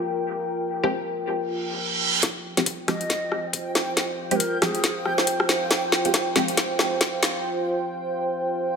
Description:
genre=deep dubstep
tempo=138 BPM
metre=4/4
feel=swing 58% on 16ths, half-time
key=F minor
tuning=A4 = 440 Hz
part: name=dark analog pad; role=sustained chords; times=0.0-8.8 s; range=F4 to G5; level=-27 LUFS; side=right 1 dB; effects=chorus
part: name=filtered dub chord stab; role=stabs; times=0.8-6.5 s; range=F3 to G4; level=-29 LUFS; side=equal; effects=phaser, dub echo
part: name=reverse cymbal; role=sound effects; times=1.6-2.2 s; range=none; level=-25 LUFS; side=right 5 dB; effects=none
part: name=electronic kick drum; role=drums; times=2.2-7.1 s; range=none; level=-40 LUFS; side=left 1 dB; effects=none
part: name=garage drum kit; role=drums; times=2.2-7.3 s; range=hi-hat, rim click, snare drum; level=-23 LUFS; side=left 1 dB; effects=high-pass filter on snare, studio reverb, high-pass filter on hats
part: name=backwards swelling texture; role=texture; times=3.5-7.4 s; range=G5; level=-33 LUFS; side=equal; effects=built-in reverb
part: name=breathy bright low ney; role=melody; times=2.9-5.0 s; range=Ab4 to Eb5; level=-31 LUFS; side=left 1 dB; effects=low-pass filter, dub echo
room=moderate echo chamber reverb, RT60 1.4 s, digital ambience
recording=none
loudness=-22 LUFS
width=side -6 dB against mid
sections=0.0-2.2 A section; 2.2-8.8 B section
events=reverse cymbal 1.6-2.2; build-up 2.2-8.8; drum fill 2.2-7.4; break 7.4-8.8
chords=0.0 Fsus2; 2.2 Fmadd9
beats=0.06 | 0.49 0.93 1.36 1.80 | 2.23 2.67 3.10 3.54 | 3.97 4.41 4.84 5.27 | 5.71 6.14 6.58 7.01 | 7.45 7.88 8.32 8.75

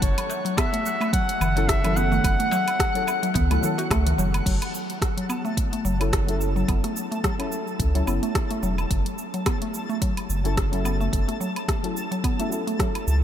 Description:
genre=organic downtempo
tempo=108 BPM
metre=4/4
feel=swing 56% on 16ths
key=F# minor pentatonic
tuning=A4 = 442 Hz
part: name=clear clarinet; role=melody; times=0.0-3.9 s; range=C#5 to F#5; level=-28 LUFS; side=left 1 dB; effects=ping-pong delay
part: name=deep mellow chord stab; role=accompaniment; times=0.0-13.2 s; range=F#3 to A4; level=-32 LUFS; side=left 2 dB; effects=chorus, sidechain pumping, tape echo
part: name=warm sub bass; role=bass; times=0.0-13.2 s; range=E1 to C#2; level=-24 LUFS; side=equal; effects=sidechain pumping
part: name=deep house drum kit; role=drums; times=0.0-13.2 s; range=cabasa, crash cymbal, hi-hat, rim click, woodblock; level=-31 LUFS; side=right 1 dB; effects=studio reverb
part: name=electronic kick drum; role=drums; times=0.0-12.9 s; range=none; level=-26 LUFS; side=equal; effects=studio reverb
part: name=twinkling granular texture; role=texture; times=0.0-13.2 s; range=F#5 to A5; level=-36 LUFS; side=equal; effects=built-in reverb
part: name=darbuka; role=percussion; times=0.3-4.3 s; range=none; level=-34 LUFS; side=left 2 dB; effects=none
part: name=mallet-like synth pluck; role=arpeggios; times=0.4-12.9 s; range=F#3 to F#4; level=-29 LUFS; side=equal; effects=chorus, cassette tape, tape echo
room=moderate cathedral reverb, RT60 6.8 s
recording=dreamy mix soaked in reverb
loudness=-21 LUFS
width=side -10 dB against mid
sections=0.0-4.5 A section; 4.5-13.2 B section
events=none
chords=0.0 F#m7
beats=| 0.02 0.57 1.13 1.68 | 2.24 2.79 3.35 3.91 | 4.46 5.02 5.57 6.13 | 6.68 7.24 7.79 8.35 | 8.91 9.46 10.02 10.57 | 11.13 11.68 12.24 12.79

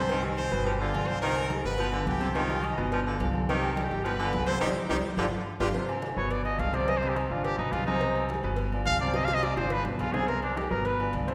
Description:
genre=latin, salsa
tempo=212 BPM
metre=4/4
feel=straight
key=C harmonic minor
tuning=A4 = 440 Hz
part: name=brilliant horn section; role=melody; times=0.0-5.7 s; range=F3 to Eb5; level=-35 LUFS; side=equal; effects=none
part: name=clear baritone saxophone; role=second line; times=0.0-5.7 s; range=D3 to F3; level=-36 LUFS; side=equal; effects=none
part: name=warm grand piano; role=accompaniment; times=0.0-11.3 s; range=B2 to C5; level=-34 LUFS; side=equal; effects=none
part: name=upright bass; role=bass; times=0.0-11.3 s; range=G1 to C2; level=-36 LUFS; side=equal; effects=none
part: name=agogo bells and timbales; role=percussion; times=0.1-11.3 s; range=none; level=-39 LUFS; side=equal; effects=none
part: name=congas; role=percussion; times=0.1-11.3 s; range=none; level=-40 LUFS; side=equal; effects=none
part: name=cowbell and bongos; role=percussion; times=0.1-11.3 s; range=none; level=-42 LUFS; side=equal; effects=none
part: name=clear trumpet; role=melody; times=6.2-11.1 s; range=D4 to F5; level=-32 LUFS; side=equal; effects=none
room=wet scoring stage reverb, RT60 1.4 s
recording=recorded in a church or concert hall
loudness=-28 LUFS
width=mono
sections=0.0-5.7 A section; 5.7-11.3 B section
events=band accent 4.6-5.7; drum fill 4.9-5.7, 9.1-10.3; trumpet solo 5.7-11.3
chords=0.1 Cm; 0.7 G7; 1.2 Cm7; 1.8 G7; 2.4 Cm; 2.9 G7; 3.5 Cm; 4.0 G7; 4.6 Cm; 5.2 G5; 5.7 Cm; 6.3 G7; 6.9 C5; 7.4 G7; 8.0 Cm; 8.6 G7; 9.1 C5; 9.7 G7; 10.3 Cm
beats=| 0.09 0.37 0.66 0.94 | 1.22 1.50 1.79 2.07 | 2.35 2.63 2.92 3.20 | 3.48 3.77 4.05 4.33 | 4.61 4.90 5.18 5.46 | 5.75 6.03 6.31 6.60 | 6.88 7.16 7.45 7.73 | 8.01 8.30 8.58 8.87 | 9.15 9.43 9.72 10.00 | 10.28 10.57 10.85 11.13

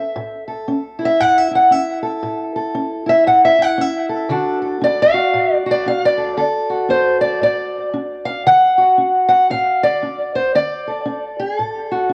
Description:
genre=acoustic country blues, solo or duo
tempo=116 BPM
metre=4/4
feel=swing 60% on 8ths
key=D major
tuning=A4 = 440 Hz
part: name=fingerpicked steel-string acoustic guitar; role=solo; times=0.0-12.1 s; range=A2 to F#5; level=-17 LUFS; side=equal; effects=cassette tape, analog delay
room=moderate spring reverb, RT60 1.3 s, studio ambience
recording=home recording on cassette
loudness=-17 LUFS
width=mono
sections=0.0-6.4 A section; 6.4-12.1 B section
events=steel-string acoustic guitar solo 0.0-6.4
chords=0.0 A; 4.3 D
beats=| 0.16 0.68 1.20 1.71 | 2.23 2.75 3.27 3.79 | 4.30 4.82 5.34 5.86 | 6.38 6.90 7.42 7.94 | 8.46 8.98 9.50 10.02 | 10.54 11.07 11.59 12.11

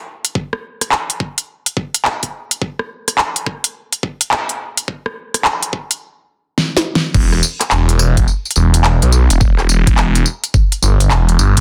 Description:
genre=glitch hop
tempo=106 BPM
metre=4/4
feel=swing 63% on 16ths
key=E minor pentatonic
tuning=A4 = 441 Hz
part: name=pop drum kit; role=drums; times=0.2-11.6 s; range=crash cymbal, handclaps, hi-hat, rim click, snare drum, tambourine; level=-19 LUFS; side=equal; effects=none
part: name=electronic kick drum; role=drums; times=0.4-10.7 s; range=none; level=-17 LUFS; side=equal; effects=high-pass filter on kick
part: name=phased detuned saw bass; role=bass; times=7.1-11.6 s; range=E1 to B1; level=-14 LUFS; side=equal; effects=phaser, overdrive
room=light reverb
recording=dense, heavily limited modern master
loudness=-16 LUFS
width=mono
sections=0.0-7.1 A section; 7.1-11.6 B section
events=build-up 0.0-7.1; drum fill 6.6-7.1; drop 7.1-11.6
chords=none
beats=| 0.35 0.92 1.49 2.05 | 2.62 3.18 3.75 4.32 | 4.88 5.45 6.01 6.58 | 7.15 7.71 8.28 8.84 | 9.41 9.98 10.54 11.11

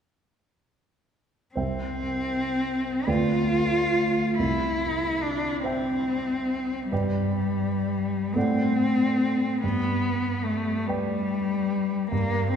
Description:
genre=classical, romantic duo for cello and grand piano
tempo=38-49 BPM (dotted quarters)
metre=6/8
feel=rubato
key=C major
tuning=A4 = 440 Hz
part: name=rich cello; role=melody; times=1.6-12.6 s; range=G3 to F4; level=-25 LUFS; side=left 2 dB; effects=none
part: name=dark grand piano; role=accompaniment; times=1.6-12.6 s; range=C2 to G5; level=-27 LUFS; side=right 2 dB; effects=none
room=wet church reverb, RT60 4.0 s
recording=recorded in a church or concert hall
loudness=-23 LUFS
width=side -7 dB against mid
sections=1.6-12.6 A section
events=none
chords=1.6 C; 3.1 G7/D; 4.4 C; 6.9 G; 8.4 D7/A; 9.6 G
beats=| 1.56 3.07 | 4.38 5.64 | 6.91 8.35 | 9.63 10.87 | 12.12

